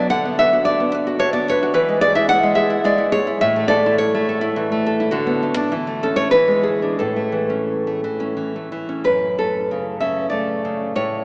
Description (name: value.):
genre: romantic piece for solo classical guitar.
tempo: 84-112 BPM.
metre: 3/4.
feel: rubato.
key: A major.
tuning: A4 = 440 Hz.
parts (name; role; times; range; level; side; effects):
nylon-string guitar; solo; 0.0-11.2 s; F#2 to F#5; -19 LUFS; equal; none.
room: wet cathedral reverb, RT60 5.7 s.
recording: in a vast, echoing space, small speaker sound.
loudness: -19 LUFS.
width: mono.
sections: 0.0-9.1 A section; 9.1-11.2 B section.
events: none.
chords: 0.1 Bm/D; 1.7 E; 3.4 A; 5.1 D6; 5.7 A/E; 6.3 E7; 7.0 A; 9.1 F#m.